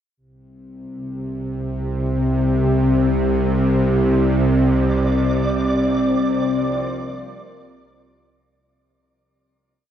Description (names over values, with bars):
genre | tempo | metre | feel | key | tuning
dark ambient drone | free time | none | none | unclear | A4 = 441 Hz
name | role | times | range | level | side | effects
bowed-like drone | drone | 0.9-8.6 s | C2 to C3 | -18 LUFS | equal | built-in reverb
deep dark ambient pad | sustained chords | 5.3-8.5 s | C4 to D5 | -23 LUFS | left 2 dB | chorus, built-in reverb, shimmer reverb
flickering grainy texture | texture | 4.6-8.6 s | D5 | -27 LUFS | right 3 dB | built-in reverb, shimmer reverb
room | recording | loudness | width
moderate huge ambient reverb, RT60 8.4 s | none | -17 LUFS | side -9 dB against mid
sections
0.2-8.5 A section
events
fade-out 4.3-8.5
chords
0.2 Csus2